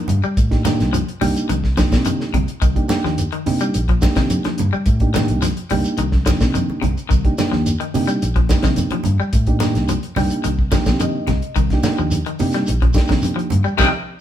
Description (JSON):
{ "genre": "afrobeat", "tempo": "107 BPM", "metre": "4/4", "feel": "straight", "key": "C dorian", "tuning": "A4 = 440 Hz", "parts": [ { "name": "reed electric piano", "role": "accompaniment", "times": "0.0-13.9 s", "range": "Bb3 to G5", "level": "-23 LUFS", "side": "right 2 dB", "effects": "none" }, { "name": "electric guitar at the edge of break-up", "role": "arpeggios", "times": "0.0-13.9 s", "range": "C3 to G3", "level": "-24 LUFS", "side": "left 5 dB", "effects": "none" }, { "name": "vintage muted fingered electric bass", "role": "bass", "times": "0.1-13.9 s", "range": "Bb1 to C3", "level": "-21 LUFS", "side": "equal", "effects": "none" }, { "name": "warm soul drum kit", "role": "drums", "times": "0.1-13.9 s", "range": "hi-hat, kick drum, snare drum", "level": "-19 LUFS", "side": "equal", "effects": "none" }, { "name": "congas", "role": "percussion", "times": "0.1-13.9 s", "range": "none", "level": "-25 LUFS", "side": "right 2 dB", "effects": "none" }, { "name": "shekere", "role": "percussion", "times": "0.1-13.9 s", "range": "none", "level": "-29 LUFS", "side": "right 1 dB", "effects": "none" } ], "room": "moderate stone room reverb, RT60 1.0 s", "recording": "band playing live in one room", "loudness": "-16 LUFS", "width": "side -11 dB against mid", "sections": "0.0-14.2 A section", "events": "reed electric piano fill 10.4-11.6; band accent 13.8-14.2", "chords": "0.0 Cm9", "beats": "| 0.37 0.93 1.49 2.05 | 2.62 3.18 3.74 4.30 | 4.86 5.42 5.98 6.54 | 7.10 7.66 8.22 8.78 | 9.33 9.89 10.45 11.01 | 11.56 12.12 12.68 13.23 | 13.79" }